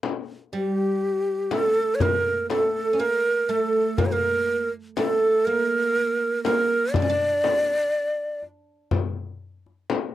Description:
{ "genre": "Turkish makam ensemble", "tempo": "122 BPM (eighths)", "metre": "10/8", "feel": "straight", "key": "unclear", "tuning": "A4 = 441 Hz", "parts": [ { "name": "darbuka", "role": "percussion", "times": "0.0-10.1 s", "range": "none", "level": "-28 LUFS", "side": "left 2 dB", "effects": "none" }, { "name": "frame drum", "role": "percussion", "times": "0.0-10.1 s", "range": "none", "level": "-29 LUFS", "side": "left 6 dB", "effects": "none" }, { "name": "breathy bright ney", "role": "melody", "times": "0.5-8.4 s", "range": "G4 to D5", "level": "-22 LUFS", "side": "right 1 dB", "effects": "none" }, { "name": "oud", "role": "second line", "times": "0.5-8.4 s", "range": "G3 to D4", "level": "-28 LUFS", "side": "right 3 dB", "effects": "none" } ], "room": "light reverb", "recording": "dry, close 1970s-style studio recording", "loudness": "-21 LUFS", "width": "side -13 dB against mid", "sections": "0.0-10.1 A section", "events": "none", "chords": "none", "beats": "0.04 0.53 1.02 1.52 2.01 2.50 3.00 3.49 | 3.99 4.48 4.97 5.47 5.96 6.45 6.95 7.44 7.93 8.43 | 8.92 9.41 9.90" }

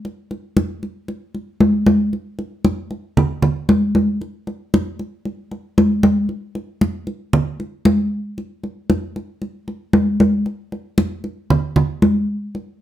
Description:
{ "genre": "latin", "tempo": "115 BPM", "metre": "4/4", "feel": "straight", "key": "none", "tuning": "none", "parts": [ { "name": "congas", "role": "percussion", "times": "0.0-12.8 s", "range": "none", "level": "-16 LUFS", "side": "equal", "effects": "none" } ], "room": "moderate studio reverb, RT60 0.7 s", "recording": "none", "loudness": "-16 LUFS", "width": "side -12 dB against mid", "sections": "0.0-12.8 A section", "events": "none", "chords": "none", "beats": "| 0.04 0.56 1.08 1.60 | 2.12 2.65 3.17 3.69 | 4.21 4.73 5.25 5.77 | 6.29 6.82 7.34 7.86 | 8.38 8.90 9.42 9.94 | 10.46 10.98 11.51 12.03 | 12.55" }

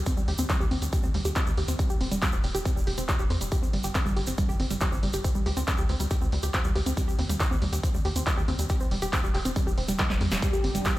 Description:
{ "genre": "uplifting trance", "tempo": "139 BPM", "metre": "4/4", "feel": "straight", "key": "G minor", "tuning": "A4 = 439 Hz", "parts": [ { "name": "tight sequencer bass", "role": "bass", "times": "0.0-11.0 s", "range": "F1 to F2", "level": "-29 LUFS", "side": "equal", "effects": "sidechain pumping" }, { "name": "wide unison pluck", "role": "arpeggios", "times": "0.1-11.0 s", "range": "G3 to G4", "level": "-32 LUFS", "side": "right 1 dB", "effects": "sidechain pumping, digital delay" }, { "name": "electronic kick drum", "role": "drums", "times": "0.1-10.9 s", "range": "none", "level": "-26 LUFS", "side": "equal", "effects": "none" }, { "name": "punchy analog drum machine", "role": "drums", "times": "0.1-10.9 s", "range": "handclaps, hi-hat, snare drum", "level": "-32 LUFS", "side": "equal", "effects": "none" }, { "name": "egg shaker", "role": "percussion", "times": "0.1-11.0 s", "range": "none", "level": "-39 LUFS", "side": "right 2 dB", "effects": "none" }, { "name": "warm velvety synth lead", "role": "second line", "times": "10.4-11.0 s", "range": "G4", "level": "-32 LUFS", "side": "left 1 dB", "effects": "chorus, digital delay" }, { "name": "analog string pad", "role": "sustained chords", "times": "10.4-11.0 s", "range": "Bb2 to G4", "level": "-35 LUFS", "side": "equal", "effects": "ensemble chorus, sidechain pumping" } ], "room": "little or no reverb", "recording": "played on a big sound system in a bare room, large studio reverb", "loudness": "-24 LUFS", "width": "side -16 dB against mid", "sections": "0.0-11.0 A section", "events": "drum fill 10.0-10.4", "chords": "0.1 Eb; 1.8 F5; 3.5 Gsus4; 5.2 D7sus4; 7.0 Eb; 8.7 F5; 10.4 Gm", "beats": "| 0.07 0.50 0.93 1.36 | 1.79 2.22 2.65 3.09 | 3.52 3.95 4.38 4.81 | 5.25 5.68 6.11 6.54 | 6.97 7.40 7.83 8.27 | 8.70 9.13 9.56 9.99 | 10.42 10.86" }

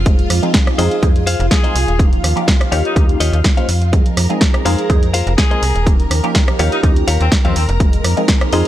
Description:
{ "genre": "filtered disco house", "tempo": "124 BPM", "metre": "4/4", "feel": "straight", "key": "F minor", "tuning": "A4 = 440 Hz", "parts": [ { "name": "string machine, full ensemble", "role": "sustained chords", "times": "0.0-8.7 s", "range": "F4 to Bb5", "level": "-24 LUFS", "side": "equal", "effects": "ensemble chorus, sidechain pumping" }, { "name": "slap-like FM bass", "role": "bass", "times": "0.0-8.6 s", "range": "Eb1 to F2", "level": "-16 LUFS", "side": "equal", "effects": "sidechain pumping" }, { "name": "funky polysynth comp", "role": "accompaniment", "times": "0.1-8.7 s", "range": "F3 to C5", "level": "-21 LUFS", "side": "right 1 dB", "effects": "chorus, phaser, sidechain pumping" }, { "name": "electronic kick drum", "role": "drums", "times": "0.1-8.4 s", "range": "none", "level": "-14 LUFS", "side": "equal", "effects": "overdrive" }, { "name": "punchy analog drum machine", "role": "drums", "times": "0.1-8.7 s", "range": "hi-hat, rim click, snare drum", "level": "-20 LUFS", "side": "right 1 dB", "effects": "none" }, { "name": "direct-recorded clean electric guitar", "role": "riff", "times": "0.7-8.7 s", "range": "F4 to F5", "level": "-22 LUFS", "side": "left 5 dB", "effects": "sidechain pumping" }, { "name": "bright horn section", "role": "melody", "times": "1.5-7.6 s", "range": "C4 to Ab4", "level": "-25 LUFS", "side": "left 2 dB", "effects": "vintage 12-bit sampler grit, sidechain pumping, ping-pong delay" } ], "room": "little or no reverb", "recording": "none", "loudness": "-12 LUFS", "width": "side -13 dB against mid", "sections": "0.0-8.7 A section", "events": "none", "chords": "0.1 Fm7; 2.0 Eb9; 3.9 Fm7; 5.9 Eb9; 7.8 Fm7", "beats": "| 0.06 0.54 1.03 1.51 | 2.00 2.48 2.96 3.45 | 3.93 4.42 4.90 5.38 | 5.87 6.35 6.83 7.32 | 7.80 8.29" }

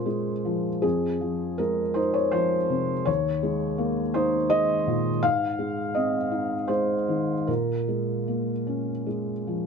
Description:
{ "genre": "neoclassical minimalist piano", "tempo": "81 BPM", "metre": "3/4", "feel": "uneven beats, rubato", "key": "unclear", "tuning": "A4 = 441 Hz", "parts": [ { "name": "felt-muted upright piano", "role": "solo", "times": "0.0-9.7 s", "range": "Eb2 to F5", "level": "-23 LUFS", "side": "equal", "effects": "none" } ], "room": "light reverb", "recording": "none", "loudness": "-23 LUFS", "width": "side -6 dB against mid", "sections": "0.0-9.7 A section", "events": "none", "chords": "0.0 Bbm7; 0.8 Fm7; 3.1 Eb7sus4; 5.2 Ab; 7.5 Bbm7", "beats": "0.07 | 0.84 1.60 2.34 | 3.08 3.80 4.51 | 5.23 5.95 6.70 | 7.48 8.27 9.06" }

